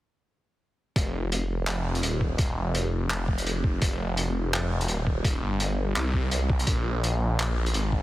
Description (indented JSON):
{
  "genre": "half-time drum and bass",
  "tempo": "168 BPM",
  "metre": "4/4",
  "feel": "swing 54% on 16ths, half-time",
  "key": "F minor",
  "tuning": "A4 = 439 Hz",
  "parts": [
    { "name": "phased detuned saw bass", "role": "bass", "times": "1.0-8.0 s", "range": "Eb1 to C2", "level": "-26 LUFS", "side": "equal", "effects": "phaser" },
    { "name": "crunchy breakbeat drum kit", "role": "drums", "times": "1.0-7.8 s", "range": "handclaps, hi-hat", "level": "-31 LUFS", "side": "equal", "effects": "none" },
    { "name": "electronic kick drum", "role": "drums", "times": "1.0-8.0 s", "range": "none", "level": "-26 LUFS", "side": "equal", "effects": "none" }
  ],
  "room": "little or no reverb",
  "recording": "heavily compressed radio sound, multiband compression",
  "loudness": "-24 LUFS",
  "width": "side -15 dB against mid",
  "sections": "1.0-8.0 A section",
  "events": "none",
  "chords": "none"
}